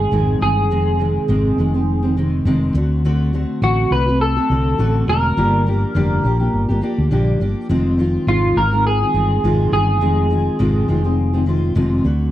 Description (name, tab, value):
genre	indie pop, bedroom pop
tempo	103 BPM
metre	4/4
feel	swing 55% on 16ths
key	F minor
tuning	A4 = 441 Hz
part	electric guitar through a small old amp	melody	0.0-11.4 s	F4 to B4	-20 LUFS	right 1 dB	analog chorus, slapback echo
part	fingerpicked steel-string acoustic guitar	accompaniment	0.0-12.3 s	F2 to G4	-19 LUFS	left 1 dB	wide subtle chorus, warbly pitch drift
part	woody fretless electric bass	bass	0.0-12.3 s	E1 to D2	-18 LUFS	equal	none
room	light reverb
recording	dry, close 1970s-style studio recording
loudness	-15 LUFS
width	side -13 dB against mid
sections	0.0-12.3 A section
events	none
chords	0.0 Fm7; 2.7 D7; 5.4 Gm7; 7.7 Fm7